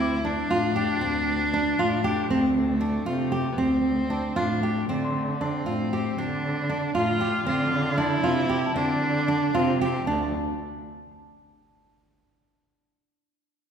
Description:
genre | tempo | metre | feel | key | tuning
contemporary instrumental, contemporary | 232 BPM (eighths) | 5/8 | straight | D minor | A4 = 439 Hz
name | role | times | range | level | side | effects
clear viola | second line | 0.0-10.3 s | A3 to F4 | -28 LUFS | equal | none
nylon-string guitar | arpeggios | 0.0-10.3 s | C4 to G4 | -26 LUFS | right 1 dB | none
muted cello | bass | 0.0-10.3 s | D2 to D3 | -28 LUFS | right 1 dB | none
celesta | texture | 0.0-0.7, 5.0-5.7, 8.7-11.3 s | A5 to D6 | -36 LUFS | left 4 dB | none
room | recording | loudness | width
wet scoring stage reverb, RT60 2.0 s | recorded in a church or concert hall | -22 LUFS | side -7 dB against mid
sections
0.0-4.9 A section; 4.9-10.1 B section; 10.1-11.4 C section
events
none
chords
0.0 Dm7; 2.3 F/D; 3.6 Dm7; 7.5 F; 10.1 D5

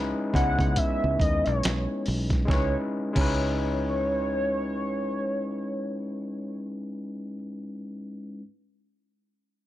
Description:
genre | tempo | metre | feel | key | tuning
R&B, neo-soul | 70 BPM | 4/4 | swing 57% on 16ths | C# minor | A4 = 436 Hz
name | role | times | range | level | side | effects
overdriven tine electric piano | accompaniment | 0.0-8.4 s | G#3 to C#5 | -30 LUFS | left 1 dB | none
fingered electric bass | bass | 0.0-7.4 s | B1 to C#3 | -29 LUFS | equal | none
warm velvety synth lead | melody | 0.3-6.7 s | C#5 to F#5 | -30 LUFS | equal | chorus
dusty soul sampler-style drum kit | drums | 0.3-3.4 s | crash cymbal, hi-hat, kick drum, snare drum | -27 LUFS | equal | none
room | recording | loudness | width
light reverb | none | -25 LUFS | side -14 dB against mid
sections
0.0-2.5 A section; 2.5-5.9 B section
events
none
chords
0.0 C#m9

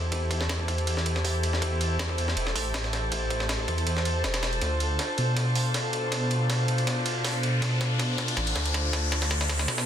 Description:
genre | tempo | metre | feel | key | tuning
drum and bass, jungle | 160 BPM | 4/4 | straight | A minor | A4 = 440 Hz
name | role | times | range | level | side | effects
dark studio string section | sustained chords | 0.0-9.9 s | D4 to C5 | -31 LUFS | left 1 dB | none
detuned saw bass | bass | 0.0-9.9 s | E1 to B2 | -28 LUFS | equal | tube saturation
breakbeat sampler-style drum kit | drums | 0.1-9.9 s | hi-hat, kick drum, ride cymbal, snare drum | -30 LUFS | right 1 dB | high-pass filter on cymbals, high-pass filter on kick, high-pass filter on snare, high-pass filter on hats
riser | sound effects | 5.5-9.9 s | none | -33 LUFS | left 2 dB | none
room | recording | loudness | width
moderate plate reverb, RT60 1.5 s | dense, heavily limited modern master | -24 LUFS | side -9 dB against mid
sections
0.0-9.9 A section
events
build-up 0.0-9.9; drum fill 4.6-9.9; riser 5.5-9.9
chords
0.0 Am7; 4.6 Dm7

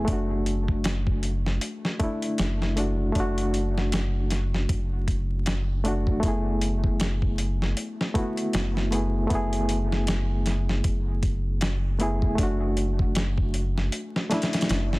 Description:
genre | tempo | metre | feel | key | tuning
trip hop | 78 BPM | 4/4 | swing 58% on 16ths | unclear | A4 = 438 Hz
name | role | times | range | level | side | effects
reed electric piano | accompaniment | 0.0-15.0 s | A3 to G#4 | -28 LUFS | equal | tremolo, vintage 12-bit sampler grit, low-pass filter, tape echo
round analog bass | bass | 0.0-15.0 s | F#1 | -26 LUFS | equal | tube saturation
dusty soul sampler-style drum kit | drums | 0.1-15.0 s | hi-hat, kick drum, snare drum | -27 LUFS | equal | small room ambience
room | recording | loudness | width
little or no reverb | dense, heavily limited modern master, vinyl crackle | -23 LUFS | side -21 dB against mid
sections
0.0-15.0 A section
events
none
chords
0.1 D/F#; 6.2 F#m11; 12.4 D/F#

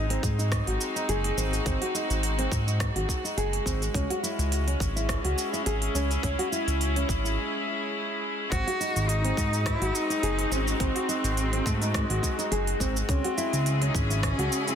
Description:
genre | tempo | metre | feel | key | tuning
organic downtempo | 105 BPM | 4/4 | swing 54% on 16ths | unclear | A4 = 442 Hz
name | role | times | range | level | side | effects
rich chamber string section | sustained chords | 0.0-14.8 s | C#3 to G#4 | -32 LUFS | left 1 dB | sidechain pumping
nylon-string guitar | arpeggios | 0.0-14.8 s | B#3 to G#4 | -31 LUFS | equal | low-pass filter, ping-pong delay
smooth synth bass | bass | 0.0-14.5 s | F#1 to G#2 | -28 LUFS | equal | none
organic electronic drum kit | drums | 0.1-14.8 s | hi-hat, rim click, shaker | -34 LUFS | right 2 dB | soft clipping on snare
electronic kick drum | drums | 0.2-14.4 s | none | -31 LUFS | equal | none
rich cello | melody | 8.5-14.8 s | G#3 to F#4 | -31 LUFS | equal | ping-pong delay
room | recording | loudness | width
moderate lush hall reverb, RT60 2.5 s | dense, heavily limited modern master | -24 LUFS | side -8 dB against mid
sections
0.0-8.5 A section; 8.5-14.8 B section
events
break 7.4-8.5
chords
0.0 G#7; 3.9 C#m; 8.5 G#7; 13.1 C#m

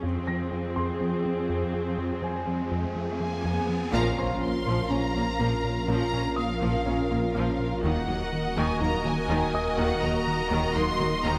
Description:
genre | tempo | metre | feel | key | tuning
cinematic, hybrid orchestral and electronic film score | 123 BPM | 4/4 | straight | Bb minor | A4 = 442 Hz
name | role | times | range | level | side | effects
rich symphonic viola section | accompaniment | 0.0-11.4 s | Eb3 to Ab4 | -36 LUFS | equal | none
warm analog pad | sustained chords | 0.0-11.4 s | Eb3 to Bb4 | -35 LUFS | equal | chorus
tight sequenced synth | arpeggios | 0.0-11.4 s | Eb3 to F4 | -40 LUFS | equal | none
round analog bass | riff | 0.0-11.4 s | Eb2 to Bb3 | -35 LUFS | equal | none
rich symphonic cello section | bass | 0.0-11.3 s | Eb2 to Bb2 | -37 LUFS | equal | none
riser and impact | sound effects | 2.1-5.9 s | none | -41 LUFS | equal | none
warm concert grand piano | texture | 0.0-11.4 s | Ab4 to Bb6 | -41 LUFS | equal | digital delay
clear symphonic violin section | melody | 3.2-11.4 s | F5 to C6 | -34 LUFS | equal | none
clear symphonic violin section | second line | 3.9-11.4 s | Bb4 to F5 | -36 LUFS | equal | none
mellow French horn section | sustained chords | 3.9-10.9 s | Bb3 to Eb4 | -39 LUFS | equal | none
detuned saw bass | bass | 3.9-11.4 s | Eb1 to Bb1 | -38 LUFS | equal | none
rich symphonic double bass section | bass | 3.9-11.3 s | Bb1 to Eb2 | -37 LUFS | equal | none
room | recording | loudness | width
moderate scoring stage reverb, RT60 2.0 s | none | -27 LUFS | mono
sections
0.0-3.9 A section; 3.9-11.4 B section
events
build-up 0.0-3.9; riser 2.1-3.9; band accent 3.9-4.4; impact 3.9-5.9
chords
0.0 Fm; 3.9 Bbm; 7.8 Ebm

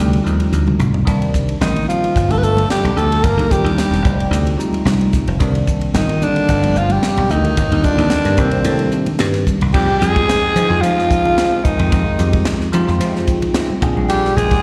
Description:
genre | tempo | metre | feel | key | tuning
electric jazz fusion | 110 BPM | 4/4 | straight | C dorian, F dorian from 9.7 s | A4 = 440 Hz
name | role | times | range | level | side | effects
growling alto saxophone | melody | 0.0-14.6 s | C4 to B4 | -20 LUFS | equal | slapback echo
brilliant trombone | second line | 0.0-14.6 s | C3 to B3 | -27 LUFS | equal | slapback echo
bell-like tine electric piano | accompaniment | 0.0-14.6 s | Eb3 to G5 | -23 LUFS | equal | phaser, slapback echo
dry thumbed slap bass | bass | 0.0-14.6 s | E1 to F3 | -20 LUFS | equal | none
crisp fusion drum kit | drums | 0.1-14.6 s | crash cymbal, hi-hat, kick drum, ride cymbal, snare drum, toms | -23 LUFS | equal | none
congas | percussion | 0.4-14.6 s | none | -28 LUFS | equal | none
electric guitar through a small old amp | stabs | 9.7-14.6 s | F3 to Ab4 | -32 LUFS | equal | none
room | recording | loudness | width
light reverb | live gig heard through the venue's PA, recital hall reverb | -16 LUFS | mono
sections
0.0-9.7 A section; 9.7-14.6 B section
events
drum fill 0.5-1.1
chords
0.0 F9; 1.1 Cm9; 2.1 G9; 3.2 Cm9/G; 4.0 F9; 5.4 Cm9; 6.5 G9; 7.6 Cm9/G; 8.4 Cm7; 9.7 Fm9; 13.8 Bb9

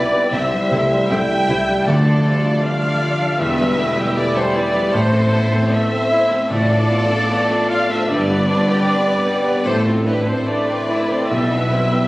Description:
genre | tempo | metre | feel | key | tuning
cinematic | 77 BPM | 4/4 | rubato | D dorian | A4 = 440 Hz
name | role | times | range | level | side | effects
bright clarinet | second line | 0.0-12.1 s | A4 to G5 | -24 LUFS | equal | none
mellow hollow large flute ensemble | second line | 0.0-12.1 s | A4 to G5 | -29 LUFS | equal | none
rich studio violin section | second line | 0.0-12.1 s | F4 to E5 | -27 LUFS | left 1 dB | none
felt-muted upright piano | accompaniment | 0.0-12.1 s | B1 to G4 | -22 LUFS | equal | none
rich symphonic viola section | accompaniment | 0.0-12.1 s | A4 to G5 | -23 LUFS | equal | none
dark French horn section | sustained chords | 0.0-12.1 s | G3 to G4 | -26 LUFS | left 1 dB | none
concert harp | arpeggios | 0.0-12.1 s | G2 to D6 | -27 LUFS | left 1 dB | none
rich symphonic violin section | melody | 0.3-12.1 s | G3 to G4 | -27 LUFS | equal | none
rich studio cello section | bass | 0.3-12.0 s | D2 to C3 | -23 LUFS | equal | none
warm symphonic double bass section | bass | 0.3-12.0 s | E1 to D2 | -24 LUFS | right 1 dB | none
timpani | percussion | 1.9-7.7 s | none | barely audible | none | none
room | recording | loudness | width
moderate scoring stage reverb, RT60 1.5 s | recorded on a phone in the room, club reverb, compression, faint mains hum | -15 LUFS | side -19 dB against mid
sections
0.0-12.1 A section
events
none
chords
0.3 C; 1.9 Dm; 3.4 Em; 4.9 Am; 6.5 Dm/A; 8.1 G; 9.7 Am; 11.3 Em/B

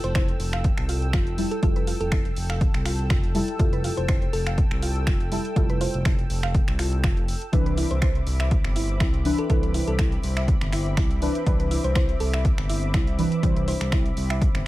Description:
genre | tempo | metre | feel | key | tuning
deep house | 122 BPM | 4/4 | swing 54% on 16ths | F lydian | A4 = 440 Hz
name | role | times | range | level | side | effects
thumb-piano-like synth pluck | melody | 0.0-14.4 s | A4 to C5 | -32 LUFS | equal | chorus, ping-pong delay
warm analog pad | sustained chords | 0.0-14.7 s | C4 to E6 | -35 LUFS | left 1 dB | chorus, sidechain pumping
deep mellow chord stab | stabs | 0.0-14.7 s | E3 to C5 | -29 LUFS | equal | chorus, sidechain pumping, ping-pong delay
smooth gliding synth bass | bass | 0.0-14.6 s | F1 to C2 | -26 LUFS | equal | sidechain pumping
deep house drum kit | drums | 0.0-14.6 s | finger snaps, hi-hat | -33 LUFS | right 1 dB | overdrive
mallet-like synth pluck | arpeggios | 0.2-14.3 s | E4 to F5 | -34 LUFS | right 1 dB | chorus, sidechain pumping, digital delay
electronic kick drum | drums | 0.2-14.5 s | none | -23 LUFS | equal | overdrive
room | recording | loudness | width
digital ambience | vinyl crackle | -21 LUFS | side -17 dB against mid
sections
0.0-14.7 A section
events
none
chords
0.0 Fmaj9; 7.5 Cmaj9

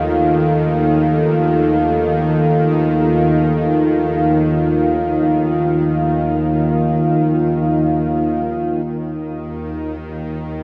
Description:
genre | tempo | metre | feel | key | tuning
dark ambient drone | free time | none | none | unclear | A4 = 440 Hz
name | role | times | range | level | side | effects
dark analog pad | sustained chords | 0.0-10.6 s | Eb4 to Bb5 | -19 LUFS | equal | chorus, shimmer reverb
bowed-like drone | drone | 0.0-10.6 s | Eb2 to Eb3 | -21 LUFS | equal | built-in reverb
room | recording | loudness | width
wet huge ambient reverb, RT60 8.4 s | dreamy mix soaked in reverb | -17 LUFS | mono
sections
0.0-8.9 A section; 8.9-10.6 B section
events
none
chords
0.0 Ebsus2

